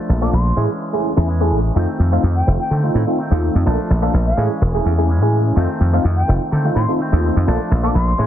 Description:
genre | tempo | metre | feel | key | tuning
house | 126 BPM | 4/4 | swing 54% on 16ths | unclear | A4 = 440 Hz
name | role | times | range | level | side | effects
electric guitar with an envelope filter | riff | 0.0-8.3 s | Eb3 to D4 | -26 LUFS | equal | vintage 12-bit sampler grit, low-pass filter
dry thumbed slap bass | bass | 0.1-8.3 s | E1 to D3 | -16 LUFS | equal | low-pass filter
breathy concert flute | melody | 0.2-8.2 s | F5 to D6 | -27 LUFS | left 2 dB | low-pass filter, tape echo
overdriven reed electric piano | accompaniment | 0.2-8.3 s | A3 to A4 | -21 LUFS | equal | phaser, low-pass filter
room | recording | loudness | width
light reverb, digital ambience | dense, heavily limited modern master | -15 LUFS | side -11 dB against mid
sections
0.0-8.3 A section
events
filter sweep 0.0-8.3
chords
0.0 Bbmaj7; 0.6 Amaj7; 1.8 F7; 3.7 Bbmaj7; 4.4 Amaj7; 5.6 F7; 7.5 Bbmaj7

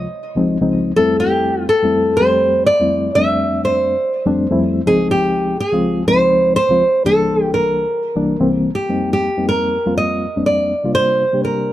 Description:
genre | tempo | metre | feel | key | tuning
jazz | 123 BPM | 4/4 | swing 54% on 16ths | F major | A4 = 441 Hz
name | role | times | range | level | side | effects
nylon-string guitar | melody | 0.0-11.7 s | G4 to E5 | -15 LUFS | right 1 dB | plate reverb
reed electric piano | accompaniment | 0.0-11.7 s | C2 to G4 | -18 LUFS | left 2 dB | fast tremolo, plate reverb
room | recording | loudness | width
moderate booth ambience, RT60 0.2 s | dark, warm production | -14 LUFS | side -13 dB against mid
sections
0.0-8.8 A section; 8.8-11.7 B section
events
none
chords
0.0 Dbmaj9; 1.0 Fmaj9; 4.9 Dbmaj9; 6.8 C7; 8.8 F9sus4; 10.7 C9sus4

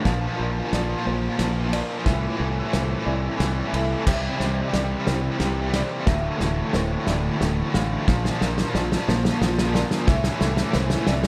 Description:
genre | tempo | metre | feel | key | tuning
post-rock | 90 BPM | 3/4 | straight | unclear | A4 = 444 Hz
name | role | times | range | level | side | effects
icy glass pad | sustained chords | 0.2-11.3 s | C3 to C5 | -39 LUFS | equal | none
felt-muted upright piano | arpeggios | 0.0-11.3 s | C5 to F5 | -37 LUFS | equal | slapback echo
mellow electric guitar | arpeggios | 0.0-11.3 s | D2 to C5 | -32 LUFS | equal | slapback echo
cranked stack guitar | riff | 0.0-11.3 s | D2 to G3 | -29 LUFS | equal | overdrive, tremolo
growling fingered electric bass | bass | 0.1-11.3 s | D1 to C2 | -29 LUFS | equal | overdrive
loose indie drum kit | drums | 0.1-11.3 s | crash cymbal, kick drum, ride cymbal, snare drum | -28 LUFS | equal | none
room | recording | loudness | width
light reverb | none | -23 LUFS | mono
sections
0.0-11.3 A section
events
build-up 0.0-11.3; drum fill 0.0-11.3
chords
0.1 Bbsus2; 2.1 Am7/C; 4.1 C7; 6.1 Dmadd9; 8.1 Bbsus2; 10.1 Am7/C

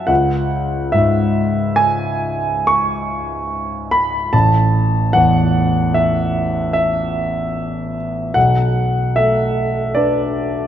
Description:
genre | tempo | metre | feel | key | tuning
classical, impressionist solo piano | 64-76 BPM | 5/4 | rubato | unclear | A4 = 440 Hz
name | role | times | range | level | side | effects
warm grand piano | solo | 0.0-10.7 s | A1 to C#6 | -15 LUFS | equal | none
room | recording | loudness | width
moderate concert hall reverb, RT60 2.3 s | none | -15 LUFS | side -10 dB against mid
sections
0.0-10.7 A section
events
none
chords
0.1 C#m; 4.3 A5; 8.4 Bm7

